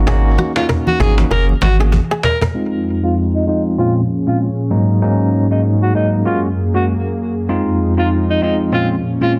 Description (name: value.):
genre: afrobeats.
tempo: 97 BPM.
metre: 4/4.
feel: swing 58% on 16ths.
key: unclear.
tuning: A4 = 439 Hz.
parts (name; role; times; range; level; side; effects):
bell-like tine electric piano; accompaniment; 0.0-9.4 s; Ab2 to Ab4; -19 LUFS; equal; low-pass filter.
sub bass with octave; bass; 0.0-2.0 s; Gb1 to Ab1; -16 LUFS; equal; none.
kora; riff; 0.1-2.5 s; Gb4 to Bb4; -26 LUFS; equal; tape echo.
cajon; drums; 0.1-2.5 s; none; -23 LUFS; equal; none.
congas; percussion; 0.4-2.4 s; none; -24 LUFS; equal; none.
breathy alto saxophone; melody; 0.6-9.3 s; Eb4 to Bb4; -22 LUFS; equal; low-pass filter, tape echo.
warm analog pad; sustained chords; 2.5-9.4 s; F2 to Ab4; -21 LUFS; equal; chorus, low-pass filter.
room: light reverb.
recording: dense, heavily limited modern master.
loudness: -16 LUFS.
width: mono.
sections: 0.0-2.5 A section; 2.5-9.4 B section.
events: drum fill 1.9-2.5; filter sweep 2.5-9.4.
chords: 0.0 Ab7sus4; 1.3 Gbadd9; 2.5 Fm7; 3.8 Bbm7; 4.7 Ab7sus4; 6.3 Gbadd9; 7.5 Fm7; 8.7 Bbm7.